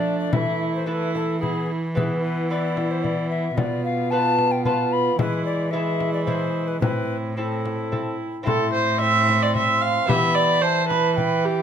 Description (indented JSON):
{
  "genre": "classical, renaissance-style consort dance",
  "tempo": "111 BPM",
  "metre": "3/4",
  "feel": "straight",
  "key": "A minor",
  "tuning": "A4 = 440 Hz",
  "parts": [
    { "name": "alto recorder", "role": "melody", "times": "0.0-11.6 s", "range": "G#4 to C6", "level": "-26 LUFS", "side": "left 6 dB", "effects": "none" },
    { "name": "warm viola", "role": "second line", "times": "0.0-11.6 s", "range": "D4 to F5", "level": "-24 LUFS", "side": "right 6 dB", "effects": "none" },
    { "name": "lute", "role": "accompaniment", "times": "0.0-11.6 s", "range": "A2 to B4", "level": "-30 LUFS", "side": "right 1 dB", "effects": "none" },
    { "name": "mellow bassoon", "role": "accompaniment", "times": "0.0-11.6 s", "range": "G#3 to E4", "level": "-31 LUFS", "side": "left 3 dB", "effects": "none" },
    { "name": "rich cello", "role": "bass", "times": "0.0-11.6 s", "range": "A2 to F3", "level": "-26 LUFS", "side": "right 1 dB", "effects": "none" },
    { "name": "frame drum", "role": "percussion", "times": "0.3-11.4 s", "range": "none", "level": "-27 LUFS", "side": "left 3 dB", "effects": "none" }
  ],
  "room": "light reverb",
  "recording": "close, detailed microphones",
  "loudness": "-20 LUFS",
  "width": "side -8 dB against mid",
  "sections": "0.0-8.5 A section; 8.5-11.6 A section",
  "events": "none",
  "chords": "0.3 Esus4; 1.4 E; 3.6 B7(b5, no3); 5.2 E; 6.8 Am; 10.1 Em"
}